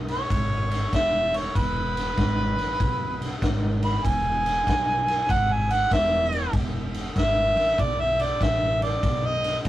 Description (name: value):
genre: electric blues shuffle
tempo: 96 BPM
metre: 4/4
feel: swing 65% on 8ths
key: E mixolydian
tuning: A4 = 440 Hz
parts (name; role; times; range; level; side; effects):
- upright bass; bass; 0.0-9.7 s; E1 to F#2; -28 LUFS; equal; none
- warm harmonica; second line; 0.1-9.6 s; B4 to B5; -24 LUFS; right 1 dB; overdrive
- raw garage drum kit; drums; 0.1-9.7 s; kick drum, ride cymbal, snare drum; -27 LUFS; equal; none
room: wet booth ambience, RT60 0.1 s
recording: rough rehearsal-room recording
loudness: -21 LUFS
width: side -14 dB against mid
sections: 0.0-9.7 A section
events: harmonica solo 0.0-9.7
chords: 0.0 E; 9.0 B